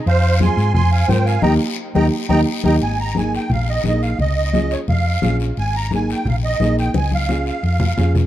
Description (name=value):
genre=latin, cumbia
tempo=174 BPM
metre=4/4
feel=straight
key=Ab major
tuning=A4 = 439 Hz
part: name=musette accordion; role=melody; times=0.1-8.1 s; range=C5 to C6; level=-22 LUFS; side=right 3 dB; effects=none
part: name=hollow-body short-scale fingered electric bass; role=bass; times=0.1-8.3 s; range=Ab1 to Ab2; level=-18 LUFS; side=equal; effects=none
part: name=guiro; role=percussion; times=0.1-8.3 s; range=none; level=-33 LUFS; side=left 8 dB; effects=none
part: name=dark upright piano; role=accompaniment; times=0.4-8.2 s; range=Bb3 to Bb4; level=-23 LUFS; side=right 1 dB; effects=none
part: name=congas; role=percussion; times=0.4-8.2 s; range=none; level=-23 LUFS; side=left 3 dB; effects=none
room=light reverb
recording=dark, warm production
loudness=-15 LUFS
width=side -13 dB against mid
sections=0.0-2.8 A section; 2.8-8.3 B section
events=band accent 1.4-2.8; drum fill 2.1-2.8, 7.0-8.3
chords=0.1 Fm; 1.4 Eb; 2.8 Absus2; 4.2 Db; 5.6 Absus2; 7.0 Db